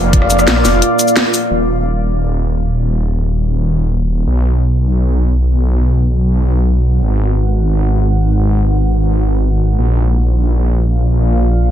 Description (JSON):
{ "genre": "dark technical drum and bass", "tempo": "free time", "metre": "none", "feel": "none", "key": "Eb minor", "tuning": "A4 = 440 Hz", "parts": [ { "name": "deep dark ambient pad", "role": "sustained chords", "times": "0.0-11.7 s", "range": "G#3 to Gb5", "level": "-19 LUFS", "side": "equal", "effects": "chorus, built-in reverb, sidechain pumping" }, { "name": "snarling distorted saw bass", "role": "bass", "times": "0.0-11.7 s", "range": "Eb1 to B1", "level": "-12 LUFS", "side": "equal", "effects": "distortion, tube saturation, sidechain pumping" }, { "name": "drum and bass drum kit", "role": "drums", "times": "0.1-1.4 s", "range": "hi-hat, rim click, shaker, snare drum", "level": "-16 LUFS", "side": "left 1 dB", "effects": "none" } ], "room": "little or no reverb", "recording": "dense, heavily limited modern master", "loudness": "-12 LUFS", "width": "side -11 dB against mid", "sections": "0.0-1.5 A section; 1.5-11.7 B section", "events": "drop 0.0-1.5; band accent 1.2; filter sweep on ambient pad 1.5-11.7", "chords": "0.0 Bb; 1.5 Ebm7; 4.3 B6; 7.0 Abm7; 9.8 Bb" }